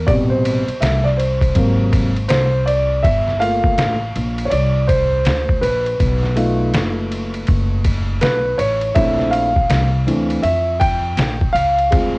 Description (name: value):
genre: hip hop, jazz-hop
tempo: 81 BPM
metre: 4/4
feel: swing 63% on 16ths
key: unclear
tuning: A4 = 440 Hz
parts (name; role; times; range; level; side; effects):
- dark concert grand piano; accompaniment; 0.0-12.2 s; B2 to G5; -18 LUFS; equal; cassette tape, plate reverb
- upright bass; bass; 0.0-12.2 s; F#1 to F2; -20 LUFS; equal; tube saturation
- trip hop sampler-style drum kit; drums; 0.1-12.1 s; hi-hat, kick drum, ride cymbal, snare drum; -20 LUFS; equal; overdrive, cassette tape
room: light reverb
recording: home recording on cassette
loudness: -14 LUFS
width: side -24 dB against mid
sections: 0.0-3.0 A section; 3.0-12.2 B section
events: grand piano solo 0.0-3.0, 3.0-12.2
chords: 0.1 Am7; 1.6 Ab9; 3.0 Gm7; 6.0 B7#11; 9.0 Bbmaj9#11